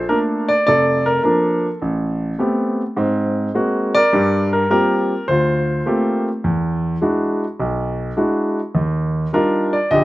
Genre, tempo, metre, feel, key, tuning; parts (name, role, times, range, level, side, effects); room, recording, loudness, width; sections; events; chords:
solo jazz; 104 BPM; 4/4; swing 69% on 8ths; A4 = 443 Hz
warm concert grand piano; solo; 0.0-10.0 s; F1 to Eb5; -16 LUFS; equal
little or no reverb; recorded outdoors, with no room sound; -16 LUFS; side -17 dB against mid
0.0-10.0 A section
0.0 Bbmaj7; 1.8 Am9; 3.0 Ab9; 4.1 Gm11; 6.4 E9; 8.7 Ebmaj9